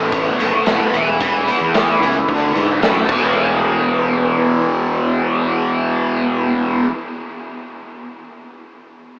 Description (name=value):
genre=psychedelic rock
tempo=111 BPM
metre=4/4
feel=straight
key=unclear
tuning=A4 = 440 Hz
part: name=fuzz guitar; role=riff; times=0.0-6.9 s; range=E2 to E4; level=-16 LUFS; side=equal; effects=distortion, phaser
part: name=fuzz fingered electric bass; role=bass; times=0.0-6.8 s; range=E1 to G#2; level=-22 LUFS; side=equal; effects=overdrive
part: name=raw garage drum kit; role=drums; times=0.1-3.2 s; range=crash cymbal, hi-hat, kick drum, snare drum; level=-20 LUFS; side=equal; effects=none
room=wet huge ambient reverb, RT60 7.5 s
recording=dreamy mix soaked in reverb, cassette tape, AM radio sound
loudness=-14 LUFS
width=side -32 dB against mid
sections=0.0-3.4 A section; 3.4-7.7 B section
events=none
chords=0.0 Asus2; 0.9 E5; 2.3 Dadd9; 3.1 E5